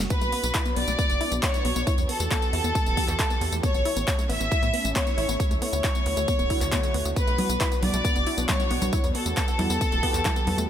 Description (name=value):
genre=uplifting trance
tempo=136 BPM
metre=4/4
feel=straight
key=unclear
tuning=A4 = 440 Hz
part: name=lush unison pad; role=sustained chords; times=0.0-10.7 s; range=D3 to G4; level=-35 LUFS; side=right 1 dB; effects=chorus, sidechain pumping
part: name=wide unison pluck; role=arpeggios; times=0.0-10.6 s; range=A3 to E4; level=-33 LUFS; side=left 2 dB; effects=sidechain pumping, tape echo
part: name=tight sequencer bass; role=bass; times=0.0-10.7 s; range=D1 to A2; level=-29 LUFS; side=equal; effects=sidechain pumping
part: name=warm studio violin section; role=second line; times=0.1-10.6 s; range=A4 to E5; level=-27 LUFS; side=left 1 dB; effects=tape echo
part: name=big-room dance drum kit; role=drums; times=0.1-10.7 s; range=congas, handclaps, hi-hat, tambourine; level=-30 LUFS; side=equal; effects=none
part: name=electronic kick drum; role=drums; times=0.1-10.3 s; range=none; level=-26 LUFS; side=equal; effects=none
room=light reverb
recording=none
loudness=-22 LUFS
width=side -10 dB against mid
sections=0.0-10.7 A section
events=filter sweep on synth arpeggio sound 0.0-10.7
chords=0.1 Bm; 1.9 Emadd9; 3.6 A; 5.4 Dadd9; 7.2 Bm; 8.9 Emadd9